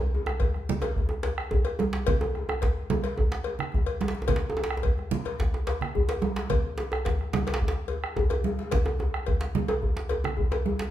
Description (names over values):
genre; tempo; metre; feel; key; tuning
west african traditional, West African drum ensemble; 108 BPM; 4/4; straight; none; none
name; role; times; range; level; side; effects
djembe; percussion; 0.1-10.9 s; none; -32 LUFS; left 3 dB; none
bombo; percussion; 0.3-10.6 s; none; -29 LUFS; equal; none
djembe; percussion; 0.3-10.9 s; none; -30 LUFS; right 1 dB; none
cowbell; percussion; 0.4-10.6 s; none; -34 LUFS; left 5 dB; none
congas; percussion; 0.6-10.8 s; none; -32 LUFS; right 6 dB; none
room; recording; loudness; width
moderate large studio reverb, RT60 1.1 s; band playing live in one room; -25 LUFS; side -12 dB against mid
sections
0.0-10.9 A section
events
none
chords
none